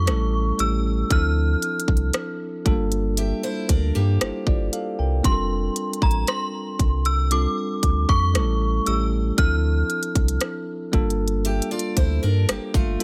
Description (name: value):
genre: contemporary R&B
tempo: 58 BPM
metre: 4/4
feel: straight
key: G dorian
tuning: A4 = 444 Hz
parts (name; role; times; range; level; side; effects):
- synth chime; melody; 0.0-10.4 s; Bb5 to F6; -29 LUFS; equal; ensemble chorus
- bell-like tine electric piano; accompaniment; 0.0-13.0 s; F3 to G5; -29 LUFS; equal; none
- warm sub bass; bass; 0.0-13.0 s; F1 to G2; -24 LUFS; equal; none
- trap drum kit; drums; 0.1-13.0 s; hi-hat, kick drum, rim click; -24 LUFS; equal; none
- picked steel-string acoustic guitar; arpeggios; 3.2-5.2, 11.4-13.0 s; A3 to E5; -33 LUFS; equal; digital delay
room: little or no reverb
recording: none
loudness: -22 LUFS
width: mono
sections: 0.0-13.0 A section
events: none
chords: 0.1 A7; 1.1 Dm7; 2.7 Gm7; 5.2 F6; 8.3 A7; 9.4 Dm7; 10.9 Gm7